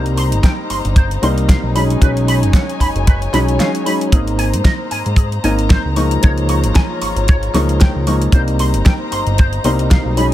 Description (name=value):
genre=nu-disco, nu disco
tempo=114 BPM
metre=4/4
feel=swing 56% on 16ths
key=unclear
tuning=A4 = 439 Hz
part: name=warm baby grand piano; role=accompaniment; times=0.0-10.3 s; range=F3 to Eb4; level=-20 LUFS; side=left 1 dB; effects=sidechain pumping, ping-pong delay
part: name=dark chamber string section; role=sustained chords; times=0.0-10.3 s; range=Eb4 to Bb5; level=-25 LUFS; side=left 3 dB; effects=sidechain pumping
part: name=fat analog bass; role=bass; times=0.0-10.3 s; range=F#1 to Ab2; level=-17 LUFS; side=equal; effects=sidechain pumping
part: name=pop drum kit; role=drums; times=0.1-10.3 s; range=hi-hat, snare drum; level=-23 LUFS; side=equal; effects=overdrive
part: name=electric guitar with an envelope filter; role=riff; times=0.2-10.2 s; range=Ab4 to Db6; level=-24 LUFS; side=right 2 dB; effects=analog chorus, vintage 12-bit sampler grit, ping-pong delay
part: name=kick drum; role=drums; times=0.4-10.0 s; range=none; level=-11 LUFS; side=equal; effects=none
room=small room ambience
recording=none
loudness=-12 LUFS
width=side -13 dB against mid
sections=0.0-10.3 A section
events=break 3.6-4.1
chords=0.0 Cm7; 1.8 B69; 4.1 Abadd9; 6.0 Db6; 8.3 Cm7